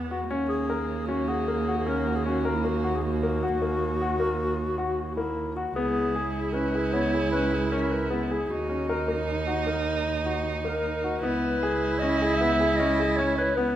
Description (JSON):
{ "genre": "contemporary instrumental, chamber music in an uneven meter", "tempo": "154 BPM", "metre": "7/4", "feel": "straight", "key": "Eb phrygian", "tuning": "A4 = 439 Hz", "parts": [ { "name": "dark cello", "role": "second line", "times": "0.0-13.8 s", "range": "Bb3 to Fb4", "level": "-30 LUFS", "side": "right 3 dB", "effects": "none" }, { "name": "warm concert grand piano", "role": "arpeggios", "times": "0.0-13.7 s", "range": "Bb3 to Cb5", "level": "-29 LUFS", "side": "left 2 dB", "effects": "none" }, { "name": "rich double bass", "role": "bass", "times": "0.0-13.8 s", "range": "Db2 to E2", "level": "-31 LUFS", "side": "right 3 dB", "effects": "none" }, { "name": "breathy clarinet", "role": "melody", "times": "0.5-13.8 s", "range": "Fb4 to Fb5", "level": "-29 LUFS", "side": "left 2 dB", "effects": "none" } ], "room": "moderate recital hall reverb, RT60 1.5 s", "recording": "none", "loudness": "-24 LUFS", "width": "side -12 dB against mid", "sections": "0.0-5.8 A section; 5.8-13.8 B section", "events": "none", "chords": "0.3 Ebm7; 5.8 Dbm7; 8.5 Ebm; 11.2 Dbm7", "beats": "| 0.30 0.69 1.08 1.47 1.86 2.25 2.64 | 3.03 3.42 3.81 4.20 4.59 4.99 5.38 | 5.76 6.16 6.55 6.94 7.33 7.72 8.11 | 8.50 8.89 9.28 9.67 10.06 10.45 10.84 | 11.23 11.63 12.02 12.41 12.80 13.19 13.58" }